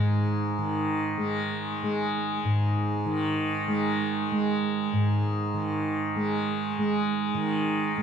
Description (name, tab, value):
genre	world meditative, free-time meditation music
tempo	free time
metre	none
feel	none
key	unclear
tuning	A4 = 440 Hz
part	tanpura	solo	0.0-8.0 s	G#2 to G#3	-24 LUFS	right 1 dB	ping-pong delay
room	wet church reverb, RT60 3.5 s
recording	dark, warm production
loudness	-25 LUFS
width	side -7 dB against mid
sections	0.0-7.4 A section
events	none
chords	none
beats	free time